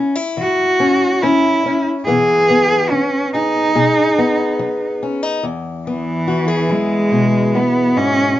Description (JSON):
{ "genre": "folk", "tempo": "71 BPM", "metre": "4/4", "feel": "straight", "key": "E major", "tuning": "A4 = 440 Hz", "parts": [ { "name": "fingerpicked acoustic archtop guitar", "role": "accompaniment", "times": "0.0-8.4 s", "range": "E2 to G#4", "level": "-18 LUFS", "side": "left 2 dB", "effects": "none" }, { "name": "warm cello", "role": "melody", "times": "0.4-8.4 s", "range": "E3 to G#4", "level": "-15 LUFS", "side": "right 1 dB", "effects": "none" } ], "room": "moderate large studio reverb, RT60 0.8 s", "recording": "dark, warm production, nothing above 7.6 kHz", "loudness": "-14 LUFS", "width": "side -13 dB against mid", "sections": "0.0-5.4 A section; 5.4-8.4 B section", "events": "cello solo 5.4-8.4", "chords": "0.0 A (rootless); 2.1 E/B; 3.8 B6; 5.4 E", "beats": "0.37 1.22 | 2.06 2.90 3.75 4.59 | 5.44 6.28 7.13 7.97" }